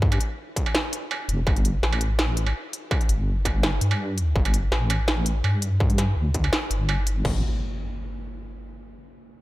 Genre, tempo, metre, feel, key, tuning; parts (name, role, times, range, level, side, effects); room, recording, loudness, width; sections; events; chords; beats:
half-time drum and bass; 166 BPM; 4/4; half-time; A4 = 440 Hz
deep soft wobble bass; bass; 0.0-7.4 s; F1 to G2; -23 LUFS; equal; chorus
electronic kick drum; drums; 0.0-7.3 s; -24 LUFS; equal; distortion
industrial drum kit; drums; 0.1-7.3 s; crash cymbal, hi-hat, snare drum, struck metal; -28 LUFS; right 1 dB
impact; sound effects; 7.2-8.7 s; -34 LUFS; equal
little or no reverb; -21 LUFS; side -17 dB against mid
0.0-7.2 A section; 7.2-8.7 B section
filter sweep on wobble bass 0.0-7.2
| 0.02 0.38 0.74 1.10 | 1.47 1.83 2.19 2.55 | 2.91 3.27 3.63 4.00 | 4.36 4.72 5.08 5.44 | 5.80 6.17 6.53 6.89 | 7.25 7.61 7.97 8.33